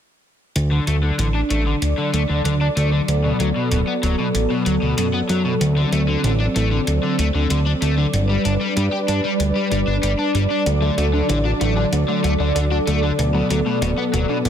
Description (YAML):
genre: synthwave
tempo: 95 BPM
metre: 4/4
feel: straight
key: D major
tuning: A4 = 440 Hz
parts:
  - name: warm analog pad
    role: sustained chords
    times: 0.6-14.5 s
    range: F#3 to D5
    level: -22 LUFS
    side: equal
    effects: chorus
  - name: fat analog bass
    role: bass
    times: 0.6-14.5 s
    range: D1 to G2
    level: -20 LUFS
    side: equal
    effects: none
  - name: electronic hi-hat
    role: drums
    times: 0.6-14.5 s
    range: none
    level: -29 LUFS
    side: left 1 dB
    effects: overdrive
  - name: crunchy overdriven guitar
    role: riff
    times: 0.7-14.4 s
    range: B2 to G4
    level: -24 LUFS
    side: left 3 dB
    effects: analog chorus, low-pass filter, tape echo
  - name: analog pluck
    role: arpeggios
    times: 10.7-14.5 s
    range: B2 to A4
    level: -26 LUFS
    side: left 2 dB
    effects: chorus, phaser, cassette tape, tape echo
room: light reverb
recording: dense, heavily limited modern master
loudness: -17 LUFS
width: side -9 dB against mid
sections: 0.6-14.5 A section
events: filter sweep on analog synth bass 0.6-14.5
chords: 0.6 D; 3.1 Bm7/D; 5.6 D7; 8.1 G; 10.7 D; 13.2 Bm7/D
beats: | 0.56 1.19 1.82 2.45 | 3.08 3.71 4.35 4.98 | 5.61 6.24 6.87 7.50 | 8.14 8.77 9.40 10.03 | 10.66 11.29 11.93 12.56 | 13.19 13.82 14.45